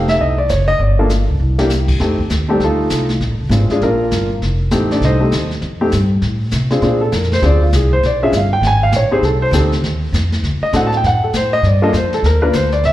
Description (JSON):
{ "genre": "jazz piano trio", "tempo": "199 BPM", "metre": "4/4", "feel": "swing 62% on 8ths", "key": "F mixolydian", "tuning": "A4 = 437 Hz", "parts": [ { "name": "warm grand piano", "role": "melody", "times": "0.0-12.9 s", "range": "G3 to A5", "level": "-16 LUFS", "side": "equal", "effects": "slapback echo" }, { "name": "upright bass", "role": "bass", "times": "0.0-12.9 s", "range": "F1 to C3", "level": "-16 LUFS", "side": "equal", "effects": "none" }, { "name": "jazz brush drum kit", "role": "drums", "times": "0.1-12.9 s", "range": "brushed snare drum, crash cymbal, hi-hat, kick drum, snare drum", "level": "-24 LUFS", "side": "left 1 dB", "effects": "none" } ], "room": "light reverb, studio reverb", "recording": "live gig heard through the venue's PA, club reverb", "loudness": "-13 LUFS", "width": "side -14 dB against mid", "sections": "0.0-2.0 A section; 2.0-12.9 B section", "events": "drum fill 1.4-1.7; grand piano solo 2.0-12.9", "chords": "0.0 F7; 0.8 G5; 1.4 N.C.; 2.0 F7; 3.2 Bb7; 4.4 F7; 6.8 Bb7; 8.0 Bdim7; 9.2 F7; 10.4 D7; 11.6 Gm7", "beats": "0.20 0.50 | 0.80 1.10 1.40 1.70 | 2.00 2.31 2.61 2.91 | 3.21 3.51 3.81 4.11 | 4.42 4.72 5.02 5.32 | 5.62 5.92 6.22 6.52 | 6.83 7.13 7.43 7.73 | 8.03 8.33 8.63 8.93 | 9.23 9.53 9.83 10.13 | 10.44 10.74 11.04 11.34 | 11.64 11.94 12.24 12.54 | 12.84" }